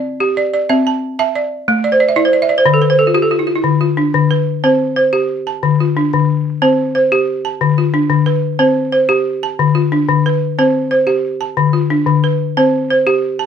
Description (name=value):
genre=west african traditional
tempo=121 BPM (dotted quarters)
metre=12/8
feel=straight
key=C major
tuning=A4 = 440 Hz
part: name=balafon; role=solo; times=0.0-13.5 s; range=D3 to A5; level=-12 LUFS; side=left 1 dB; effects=none
room=moderate studio reverb, RT60 0.7 s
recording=none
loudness=-12 LUFS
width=side -8 dB against mid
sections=0.0-3.6 A section; 3.6-13.5 B section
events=balafon fill 1.8-3.6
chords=0.0 C; 1.7 A5; 2.7 Dm; 4.6 C5; 5.6 Dm; 6.6 C5; 7.6 Dm; 8.6 C5; 9.6 Dm; 10.6 C5; 11.6 Dm; 12.6 C5